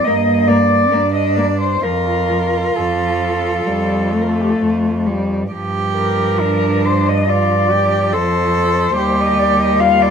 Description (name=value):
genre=classical, lyrical piece for cello ensemble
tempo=64-74 BPM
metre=4/4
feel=rubato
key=unclear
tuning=A4 = 440 Hz
part: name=rich cello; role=melody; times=0.0-10.1 s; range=G4 to F5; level=-17 LUFS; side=left 3 dB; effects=none
part: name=warm cello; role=second line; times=0.0-10.1 s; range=Bb3 to A4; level=-19 LUFS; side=right 5 dB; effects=none
part: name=rich cello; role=accompaniment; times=0.1-10.1 s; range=F3 to Bb3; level=-21 LUFS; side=left 2 dB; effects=none
part: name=warm cello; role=bass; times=0.1-10.1 s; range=Eb2 to G2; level=-20 LUFS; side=right 1 dB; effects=none
room=moderate studio reverb, RT60 0.8 s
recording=minimal, uncompressed stereo recording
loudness=-14 LUFS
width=side -7 dB against mid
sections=0.0-10.1 A section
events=none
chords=0.1 Gm; 1.8 F; 5.5 Gm7; 9.0 Eb